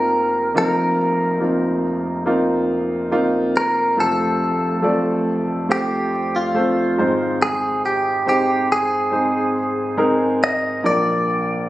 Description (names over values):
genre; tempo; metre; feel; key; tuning
pop; 70 BPM; 4/4; straight; unclear; A4 = 440 Hz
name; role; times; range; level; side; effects
direct-recorded clean electric guitar; melody; 0.0-11.7 s; F4 to Eb5; -20 LUFS; equal; none
warm baby grand piano; accompaniment; 0.0-11.7 s; F1 to D5; -19 LUFS; equal; none
room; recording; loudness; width
light reverb, studio reverb; recorded on a phone in the room, compression; -17 LUFS; side -15 dB against mid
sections
0.0-4.0 A section; 4.0-11.7 B section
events
none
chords
0.0 F7sus4; 4.0 F; 7.0 Ab; 10.8 Bb